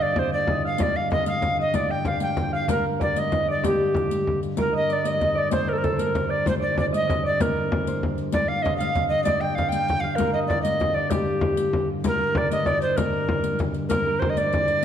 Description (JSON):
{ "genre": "medieval dance", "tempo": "128 BPM (dotted quarters)", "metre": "6/8", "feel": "straight", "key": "G minor", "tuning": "A4 = 440 Hz", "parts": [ { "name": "alto recorder", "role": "melody", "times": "0.0-14.8 s", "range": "G4 to G5", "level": "-24 LUFS", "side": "equal", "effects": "none" }, { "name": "concert harp", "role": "second line", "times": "0.0-14.8 s", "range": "G4 to G5", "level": "-28 LUFS", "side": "right 2 dB", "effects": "none" }, { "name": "pipe organ, principal", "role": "drone", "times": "0.0-14.8 s", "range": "G2 to D3", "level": "-29 LUFS", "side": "equal", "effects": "none" }, { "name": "frame drum", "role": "percussion", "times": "0.0-14.7 s", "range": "none", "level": "-28 LUFS", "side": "left 2 dB", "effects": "none" }, { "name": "riq", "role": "percussion", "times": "0.8-14.8 s", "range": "none", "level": "-33 LUFS", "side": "left 8 dB", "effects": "none" } ], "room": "wet recital hall reverb, RT60 1.5 s", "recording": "dark, warm production", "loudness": "-21 LUFS", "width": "side -9 dB against mid", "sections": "0.0-4.6 A section; 4.6-12.1 A section; 12.1-14.8 B section", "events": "speeding up 0.0-14.8", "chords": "none", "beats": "0.33 | 0.81 1.28 | 1.75 2.23 | 2.70 3.17 | 3.64 4.11 | 4.58 5.06 | 5.53 6.00 | 6.46 6.93 | 7.40 7.87 | 8.34 8.80 | 9.27 9.73 | 10.20 10.66 | 11.13 11.59 | 12.06 12.52 | 12.98 13.45 | 13.91 14.37 | 14.83" }